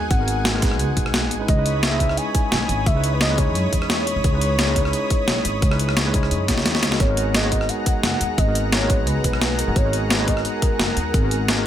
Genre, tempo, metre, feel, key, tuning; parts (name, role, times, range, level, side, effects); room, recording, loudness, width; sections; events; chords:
liquid drum and bass; 174 BPM; 4/4; swing 54% on 16ths; A4 = 440 Hz
warm velvety synth lead; melody; 0.0-11.7 s; A#4 to G#5; -27 LUFS; equal; chorus, dub echo
tine electric piano; accompaniment; 0.0-11.7 s; G#3 to D#5; -26 LUFS; equal; fast stereo tremolo, ping-pong delay
lush unison pad; sustained chords; 0.0-11.7 s; G#4 to D#6; -29 LUFS; equal; chorus, sidechain pumping
upright bass; bass; 0.0-11.7 s; F#1 to F#2; -24 LUFS; equal; tube saturation
breakbeat sampler-style drum kit; drums; 0.1-11.6 s; hi-hat, rim click, snare drum; -22 LUFS; left 1 dB
electronic kick drum; drums; 0.1-11.2 s; -21 LUFS; equal
digital ambience; -18 LUFS; side -10 dB against mid
0.0-7.0 A section; 7.0-11.7 A section
drop 0.0-7.0, 7.0-11.7; drum fill 6.5-7.0
0.0 G#m9